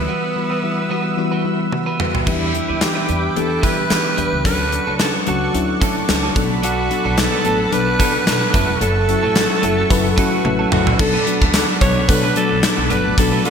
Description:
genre	1980s-style pop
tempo	110 BPM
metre	4/4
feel	swing 55% on 16ths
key	B minor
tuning	A4 = 440 Hz
part	raspy alto saxophone	melody	0.0-13.5 s	B3 to C#5	-22 LUFS	right 1 dB	ping-pong delay
part	mellow FM electric piano	accompaniment	0.0-13.5 s	E3 to B5	-21 LUFS	left 4 dB	chorus
part	lush unison pad	sustained chords	0.0-13.5 s	A4 to E6	-25 LUFS	right 2 dB	chorus
part	clean electric guitar	riff	0.0-13.5 s	F#3 to B4	-26 LUFS	right 5 dB	lush chorus, ping-pong delay
part	upright bass	bass	0.0-13.3 s	E1 to E3	-24 LUFS	equal	none
part	gated 80s drum kit	drums	1.7-13.5 s	crash cymbal, hi-hat, kick drum, snare drum, tambourine, toms	-19 LUFS	equal	gated reverb
room	moderate lush hall reverb, RT60 1.9 s, small room ambience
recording	bright 1980s-style digital production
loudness	-15 LUFS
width	side -7 dB against mid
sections	0.0-2.3 A section; 2.3-11.0 B section; 11.0-13.5 C section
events	drum fill 1.7-2.3, 10.4-11.0; FM electric piano fill 9.4-11.0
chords	0.0 Emadd9; 2.3 Em7; 4.5 Dmaj7; 6.4 Bm7; 8.5 F#m7; 11.0 Bm7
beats	| 0.09 0.63 1.18 1.72 | 2.27 2.81 3.36 3.90 | 4.45 5.00 5.54 6.09 | 6.63 7.18 7.72 8.27 | 8.81 9.36 9.90 10.45 | 10.99 11.54 12.09 12.63 | 13.18

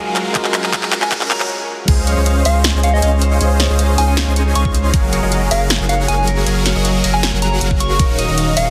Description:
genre	future bass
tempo	157 BPM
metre	4/4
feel	half-time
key	unclear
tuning	A4 = 440 Hz
part	soft struck synth lead	melody	0.0-8.7 s	Eb5 to Db6	-24 LUFS	equal	chorus, sidechain pumping, digital delay
part	tine electric piano	accompaniment	0.0-1.9 s	Ab3 to F5	-28 LUFS	equal	sidechain pumping, digital delay
part	shimmering ambient pad	sustained chords	0.1-8.7 s	Db3 to F5	-32 LUFS	equal	none
part	supersaw chords	riff	0.0-8.7 s	Eb3 to Ab5	-23 LUFS	equal	phaser, sidechain pumping
part	saturated sub bass	bass	0.0-8.7 s	Eb1 to Db2	-19 LUFS	equal	sidechain pumping, high-pass filter
part	riser and swell	sound effects	0.0-1.9 s	none	-29 LUFS	equal	none
part	big-room dance drum kit	drums	0.2-8.6 s	crash cymbal, handclaps, hi-hat, snare drum	-22 LUFS	equal	studio reverb
part	electronic kick drum	drums	0.3-2.0, 4.7-5.0, 7.7-8.1 s	none	-18 LUFS	equal	studio reverb
part	concert harp	arpeggios	1.9-8.7 s	Ab4 to F5	-27 LUFS	equal	sidechain pumping, digital delay
room	light reverb, digital ambience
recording	heavily compressed radio sound, multiband compression, high-pass filter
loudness	-15 LUFS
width	mono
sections	0.0-1.9 A section; 1.9-8.7 B section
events	build-up 0.0-1.9; drum fill 0.0-1.5; riser 0.0-1.5; swell 1.1-1.9; stop 1.5-1.9; drop 1.9-8.7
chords	0.0 Gbmaj9; 1.9 Dbmaj7; 4.9 Gbmaj9; 8.0 Ebm9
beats	| 0.35 0.73 1.11 1.50 | 1.88 2.26 2.64 3.03 | 3.41 3.79 4.17 4.55 | 4.94 5.32 5.70 6.08 | 6.47 6.85 7.23 7.61 | 7.99 8.38

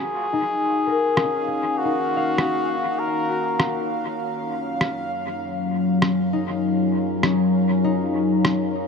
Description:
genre	ambient dub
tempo	99 BPM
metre	4/4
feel	swing 57% on 16ths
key	Eb minor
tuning	A4 = 440 Hz
part	trumpet with cup mute	melody	0.0-3.9 s	Gb4 to Bb4	-25 LUFS	equal	dub echo
part	deep dark ambient pad	sustained chords	0.0-8.9 s	Gb3 to Bb5	-24 LUFS	left 1 dB	chorus, built-in reverb
part	bubbling stepped-filter texture	texture	0.0-8.9 s	F5	-32 LUFS	right 2 dB	chorus, built-in reverb
part	concert harp	arpeggios	0.3-8.9 s	Db4 to F5	-26 LUFS	left 6 dB	low-pass filter, tape echo
part	electronic rim click	drums	1.2-8.6 s	none	-25 LUFS	equal	low-pass filter on perc, small room ambience, low-pass filter on snare, dub echo
room	moderate huge ambient reverb, RT60 8.0 s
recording	dark, warm production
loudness	-20 LUFS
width	side -5 dB against mid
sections	0.0-8.9 A section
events	filter sweep on ambient pad 0.0-8.9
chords	0.0 Ebm7; 4.2 Gbmaj7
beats	0.57 1.17 | 1.78 2.38 2.99 3.60 | 4.20 4.81 5.42 6.02 | 6.63 7.23 7.84 8.45

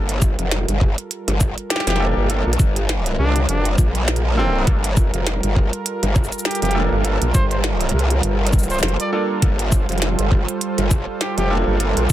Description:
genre	glitch hop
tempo	101 BPM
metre	4/4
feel	swing 57% on 16ths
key	G minor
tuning	A4 = 444 Hz
part	warm analog pad	sustained chords	0.0-12.1 s	G3 to C5	-26 LUFS	right 2 dB	chorus, sidechain pumping
part	bright concert grand piano	stabs	0.0-12.0 s	Bb3 to A4	-25 LUFS	right 1 dB	sidechain pumping, ping-pong delay
part	growl bass	bass	0.0-12.1 s	F1 to C2	-19 LUFS	equal	chorus, tube saturation
part	glitchy drum kit	drums	0.1-12.1 s	hi-hat, rim click, shaker, snare drum	-23 LUFS	right 1 dB	overdrive
part	electronic kick drum	drums	0.2-12.1 s	none	-17 LUFS	equal	overdrive
part	warm trumpet	melody	1.7-11.6 s	C4 to D5	-26 LUFS	equal	vintage 12-bit sampler grit, ping-pong delay
room	light reverb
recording	dense, heavily limited modern master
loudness	-17 LUFS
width	side -13 dB against mid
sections	0.0-12.1 A section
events	none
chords	0.0 Gm9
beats	0.51 1.11 1.70 | 2.30 2.89 3.48 4.08 | 4.67 5.27 5.86 6.45 | 7.05 7.64 8.24 8.83 | 9.43 10.02 10.61 11.21 | 11.80

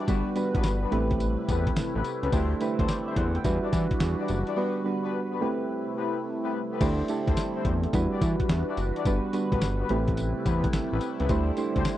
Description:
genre	R&B, new jack swing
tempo	107 BPM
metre	4/4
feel	swing 66% on 16ths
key	A dorian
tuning	A4 = 441 Hz
part	soft electric-piano-like synth keys	accompaniment	0.0-12.0 s	G3 to G5	-29 LUFS	right 2 dB	chorus
part	phased analog pad	sustained chords	0.0-12.0 s	C3 to B4	-34 LUFS	left 1 dB	phaser, chorus
part	warm horn section	stabs	0.0-11.9 s	B3 to D5	-34 LUFS	left 9 dB	none
part	fat analog bass	bass	0.1-11.8 s	F#1 to E3	-28 LUFS	equal	none
part	dusty soul sampler-style drum kit	drums	0.1-12.0 s	crash cymbal, hi-hat, kick drum, snare drum, tambourine	-28 LUFS	equal	overdrive, vintage 12-bit sampler grit
room	little or no reverb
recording	dry, close 1970s-style studio recording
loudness	-24 LUFS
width	side -13 dB against mid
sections	0.0-6.8 A section; 6.8-12.0 A section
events	break 4.6-6.8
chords	0.1 Gmaj7; 0.9 Am9; 2.3 D9sus4; 3.4 Em9; 4.6 Gmaj7; 5.4 Am9; 6.8 D9sus4; 7.9 Em9; 9.1 Gmaj7; 9.9 Am9; 11.3 D9sus4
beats	| 0.08 0.64 1.20 1.76 | 2.32 2.88 3.44 4.00 | 4.57 5.13 5.69 6.25 | 6.81 7.37 7.93 8.49 | 9.05 9.61 10.17 10.73 | 11.29 11.86

